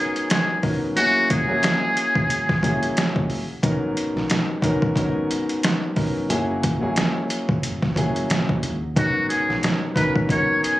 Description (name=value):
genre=hip hop, boom-bap hip-hop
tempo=90 BPM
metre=4/4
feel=swing 58% on 16ths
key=G# minor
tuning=A4 = 440 Hz
part: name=trumpet with metal mute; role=melody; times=0.0-3.1, 9.0-10.8 s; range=F#4 to C#5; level=-21 LUFS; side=equal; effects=high-pass filter, low-pass filter, analog delay
part: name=warm baby grand piano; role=accompaniment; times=0.0-10.8 s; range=G#2 to A#4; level=-24 LUFS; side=left 1 dB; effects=high-pass filter, low-pass filter
part: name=trip hop sampler-style drum kit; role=drums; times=0.2-10.8 s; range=hi-hat, kick drum, snare drum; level=-23 LUFS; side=equal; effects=overdrive
part: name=deep dub fingered electric bass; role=bass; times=3.6-10.6 s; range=F#1 to D#2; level=-30 LUFS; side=equal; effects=none
room=light reverb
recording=recorded on a phone in the room, club reverb, compression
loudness=-19 LUFS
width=side -16 dB against mid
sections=0.0-10.8 A section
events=break 0.0-3.6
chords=0.0 G#m11; 1.0 F#9; 3.6 G#m11; 6.3 F#9; 9.0 G#m11